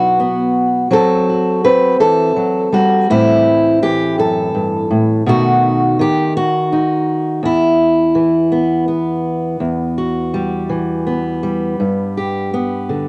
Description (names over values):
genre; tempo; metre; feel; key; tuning
folk, solo fingerstyle acoustic guitar; 55 BPM (dotted quarters); 6/8; straight; E minor; A4 = 440 Hz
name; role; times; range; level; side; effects
fingerpicked steel-string acoustic guitar; solo; 0.0-13.1 s; E2 to B4; -15 LUFS; equal; cassette tape
room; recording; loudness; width
moderate booth ambience, RT60 0.2 s; home recording on cassette, nothing above 10.6 kHz; -15 LUFS; mono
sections
0.0-9.6 A section; 9.6-13.1 B section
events
none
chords
0.0 B; 0.9 F#dim; 3.1 Am7; 5.3 B7; 7.4 E5; 9.6 Em; 11.8 G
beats
| 0.92 2.01 | 3.09 4.18 | 5.27 6.36 | 7.44 8.53 | 9.62 10.71 | 11.80 12.89